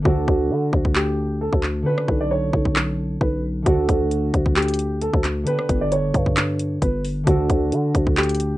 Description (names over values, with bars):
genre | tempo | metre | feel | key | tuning
hip hop, trap | 133 BPM | 4/4 | half-time | D major | A4 = 440 Hz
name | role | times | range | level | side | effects
concert harp | accompaniment | 0.0-8.6 s | D3 to B4 | -24 LUFS | right 1 dB | low-pass filter
growling 808-style bass | bass | 0.0-8.6 s | G1 to D3 | -23 LUFS | equal | none
dark concert grand piano | melody | 0.1-8.6 s | F#4 to D5 | -25 LUFS | right 1 dB | low-pass filter, ping-pong delay
trap drum kit | drums | 0.1-8.5 s | handclaps, hi-hat, kick drum, rim click | -21 LUFS | equal | overdrive, vintage 12-bit sampler grit
room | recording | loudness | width
little or no reverb | rough home demo mix | -18 LUFS | side -16 dB against mid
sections
0.0-8.6 A section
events
break 0.0-3.7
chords
0.1 D; 1.9 Bmadd9; 3.7 D; 5.5 G; 7.3 D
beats
| 0.05 0.50 0.95 1.41 | 1.86 2.31 2.76 3.21 | 3.66 4.11 4.56 5.01 | 5.47 5.92 6.37 6.82 | 7.27 7.72 8.17